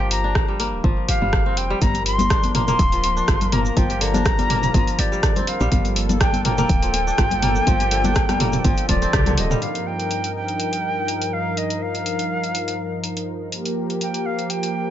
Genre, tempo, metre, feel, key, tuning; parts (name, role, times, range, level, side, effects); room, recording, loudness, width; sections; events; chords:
afro house; 123 BPM; 4/4; swing 54% on 16ths; G minor; A4 = 440 Hz
silver concert flute; melody; 0.0-14.9 s; D5 to C6; -24 LUFS; equal; ping-pong delay
kora; arpeggios; 0.0-10.8 s; D3 to G4; -26 LUFS; left 2 dB; sidechain pumping, ping-pong delay
woody FM bass; bass; 0.0-9.5 s; D1 to C2; -25 LUFS; equal; tube saturation, sidechain pumping
deep house drum kit; drums; 0.1-14.7 s; hi-hat, rim click, toms; -24 LUFS; right 1 dB
electronic kick drum; drums; 0.4-9.2 s; -21 LUFS; equal
warm analog pad; sustained chords; 1.8-14.9 s; G2 to Bb4; -27 LUFS; right 1 dB; chorus, sidechain pumping
congas; percussion; 1.8-9.4 s; -26 LUFS; left 4 dB
tube shaker; percussion; 1.8-9.6 s; -38 LUFS; right 2 dB
small room ambience; nothing above 7.6 kHz; -18 LUFS; side -11 dB against mid
0.0-9.6 A section; 9.6-14.9 B section
drum fill 8.9-9.6; band accent 9.1
0.0 Gm7; 5.7 Gm9; 9.6 F7sus4/G; 13.5 Gm7